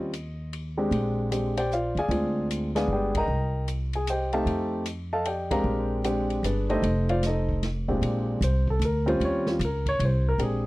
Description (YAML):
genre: jazz piano trio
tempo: 152 BPM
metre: 3/4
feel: swing 65% on 8ths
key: Bb mixolydian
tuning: A4 = 440 Hz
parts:
  - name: warm grand piano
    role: melody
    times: 0.0-10.7 s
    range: Bb2 to Bb5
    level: -26 LUFS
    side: equal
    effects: none
  - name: upright bass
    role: bass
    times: 0.0-10.7 s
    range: F1 to F2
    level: -27 LUFS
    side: equal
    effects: none
  - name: open jazz drum kit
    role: drums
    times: 0.1-10.5 s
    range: hi-hat, kick drum, ride cymbal, snare drum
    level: -36 LUFS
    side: equal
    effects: none
room: little or no reverb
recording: dry, close 1970s-style studio recording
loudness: -24 LUFS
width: side -19 dB against mid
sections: 0.0-8.0 A section; 8.0-10.7 B section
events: drum fill 2.9-3.3; band accent 3.1, 5.4; grand piano solo 8.0-10.7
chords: 0.0 Eb6; 0.9 Bb13; 2.1 Dm7b5; 2.9 G; 3.3 Cm7; 4.5 F13; 5.6 Bb13; 6.4 G; 6.8 F13; 8.0 Bb13; 9.2 Eb13